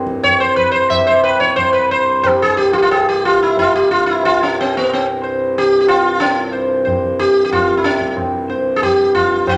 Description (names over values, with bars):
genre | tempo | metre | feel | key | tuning
indian classical, Hindustani | 91 BPM | 4/4 | straight | C major | A4 = 440 Hz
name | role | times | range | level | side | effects
pedal harmonium | drone | 0.0-9.6 s | C2 to G2 | -26 LUFS | equal | none
tabla | percussion | 0.1-9.6 s | none | -26 LUFS | equal | none
sitar | melody | 0.2-9.6 s | B3 to E5 | -15 LUFS | equal | none
room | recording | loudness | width
wet large studio reverb, RT60 1.2 s | tape saturation | -15 LUFS | mono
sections
0.0-9.5 A section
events
speeding up 0.0-9.6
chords
none